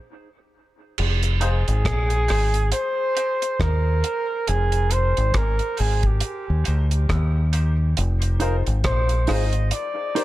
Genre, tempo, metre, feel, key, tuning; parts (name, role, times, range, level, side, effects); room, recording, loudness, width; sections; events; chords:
dub reggae; 69 BPM; 4/4; swing 58% on 16ths; F dorian; A4 = 439 Hz
deep dub fingered electric bass; bass; 1.0-9.7 s; F1 to Eb2; -20 LUFS; equal
deep reggae drum kit; drums; 1.0-10.2 s; crash cymbal, hi-hat, kick drum, rim click; -27 LUFS; right 1 dB
warm flugelhorn; melody; 1.4-10.2 s; G4 to Eb5; -25 LUFS; right 1 dB; dub echo
mellow electric guitar; accompaniment; 1.4-10.2 s; Eb4 to C5; -32 LUFS; right 5 dB; high-pass filter, dub echo
dark upright piano; stabs; 1.4-10.2 s; Eb4 to C5; -33 LUFS; left 6 dB; high-pass filter, dub echo
studio reverb; -19 LUFS; side -16 dB against mid
1.0-10.2 A section
break 0.0-1.0; filter sweep 0.0-8.0
0.0 N.C.; 1.0 Fm7; 2.7 Eb6; 4.5 Fm7; 6.2 Eb6; 8.0 Fm7; 9.7 Eb6